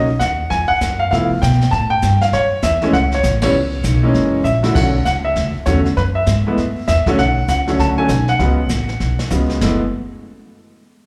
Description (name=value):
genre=jazz piano trio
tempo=198 BPM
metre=4/4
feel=swing 62% on 8ths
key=F# minor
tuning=A4 = 440 Hz
part: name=clear concert grand piano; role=melody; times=0.0-9.8 s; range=C#3 to A5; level=-19 LUFS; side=equal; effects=slapback echo
part: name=upright bass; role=bass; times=0.0-9.8 s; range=F#1 to C#3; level=-20 LUFS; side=equal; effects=none
part: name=jazz brush drum kit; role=drums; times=0.2-9.8 s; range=brushed snare drum, crash cymbal, hi-hat, kick drum, ride cymbal, snare drum, toms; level=-27 LUFS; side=equal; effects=slapback echo
room=light reverb, studio ambience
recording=live gig heard through the venue's PA, club reverb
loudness=-16 LUFS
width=mono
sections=0.0-4.8 A section; 4.8-9.6 B section; 9.6-10.8 C section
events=band accent 3.4; drum fill 4.4-4.8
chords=0.0 B; 1.1 C#7b13; 2.3 F#m7; 3.5 C#7(no3); 4.1 F#7; 4.8 Bm9; 6.0 F#7sus2; 7.2 Bm9; 8.4 C#7sus4; 9.6 N.C.